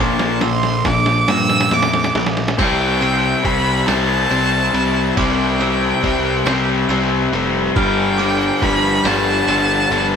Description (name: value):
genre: post-rock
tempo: 46 BPM (dotted quarters)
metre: 6/8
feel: straight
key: C major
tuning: A4 = 437 Hz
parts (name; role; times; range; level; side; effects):
- warm violin; melody; 0.0-10.2 s; G5 to E6; -20 LUFS; right 3 dB; none
- clear studio string section; sustained chords; 0.0-10.2 s; Bb2 to C5; -29 LUFS; right 2 dB; none
- electric guitar through a small old amp; arpeggios; 0.0-10.2 s; G2 to D4; -27 LUFS; equal; none
- glockenspiel with brass mallets; arpeggios; 0.0-9.9 s; D6 to G6; -28 LUFS; right 9 dB; none
- overdriven electric guitar; riff; 0.0-10.2 s; G2 to C4; -18 LUFS; left 5 dB; none
- fuzz picked electric bass; bass; 0.0-10.2 s; F1 to G2; -23 LUFS; right 1 dB; overdrive
- lo-fi sampler-style drum kit; drums; 0.2-10.1 s; crash cymbal, kick drum, ride cymbal, snare drum; -23 LUFS; right 2 dB; none
room: moderate studio reverb, RT60 0.8 s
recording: band playing live in one room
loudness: -14 LUFS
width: side -7 dB against mid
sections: 0.0-2.6 A section; 2.6-10.2 B section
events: build-up 0.0-2.6; drum fill 0.0-2.6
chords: 0.0 Bbmaj7; 2.6 Cmaj7; 7.8 G7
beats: | 0.00 1.29 | 2.59 3.88 | 5.17 6.47 | 7.76 9.05